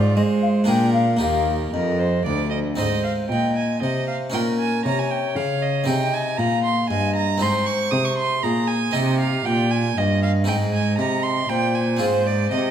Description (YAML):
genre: classical, baroque-style sonata movement with continuo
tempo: 117 BPM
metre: 3/4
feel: straight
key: Ab major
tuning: A4 = 440 Hz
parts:
  - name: bright baroque flute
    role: melody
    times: 0.0-12.7 s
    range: G4 to G5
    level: -26 LUFS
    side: left 4 dB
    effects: none
  - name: rich violin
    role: second line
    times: 0.0-12.7 s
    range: F4 to Eb6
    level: -25 LUFS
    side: right 5 dB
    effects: none
  - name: harpsichord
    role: accompaniment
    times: 0.0-12.7 s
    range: D2 to C5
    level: -24 LUFS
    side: left 1 dB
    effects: none
  - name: rich cello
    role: bass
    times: 0.0-12.7 s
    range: D2 to Ab3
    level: -24 LUFS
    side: right 2 dB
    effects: none
room: wet recital hall reverb, RT60 1.6 s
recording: none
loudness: -19 LUFS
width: side -9 dB against mid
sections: 0.0-2.8 A section; 2.8-12.7 A section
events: none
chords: 0.0 Fm/Ab; 0.7 Bb7; 1.2 Eb; 2.8 Ab; 4.3 Eb5/Bb; 5.9 Ab; 8.9 Cm; 10.5 Ab; 12.0 Fm/Ab